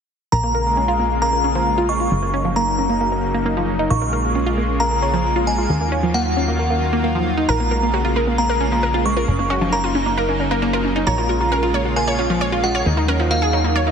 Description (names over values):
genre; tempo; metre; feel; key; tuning
trance; 134 BPM; 4/4; straight; Bb minor; A4 = 443 Hz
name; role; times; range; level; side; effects
glassy synth bell; second line; 0.3-13.9 s; F5 to Db6; -22 LUFS; equal; chorus, tremolo, tape echo
analog pluck; arpeggios; 0.3-13.9 s; F3 to Bb4; -23 LUFS; right 2 dB; chorus, phaser, tape echo
plucky analog bass; bass; 0.3-13.9 s; Gb1 to Eb2; -23 LUFS; equal; none
lush unison pad; sustained chords; 0.4-13.9 s; Db3 to F4; -24 LUFS; equal; chorus
wide unison pluck; melody; 7.5-13.9 s; Bb3 to Db5; -22 LUFS; equal; wide subtle chorus, ping-pong delay
room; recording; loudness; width
moderate lush hall reverb, RT60 2.0 s; dense, heavily limited modern master; -16 LUFS; side -7 dB against mid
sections
0.3-13.9 A section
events
filter sweep on synth arpeggio sound 0.3-13.9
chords
0.3 Bbm7; 2.1 Gb6; 3.9 Bbm7; 5.7 Ebmadd9; 7.5 Bbm7; 9.3 Gb6; 11.1 Bbm7; 12.9 Ebmadd9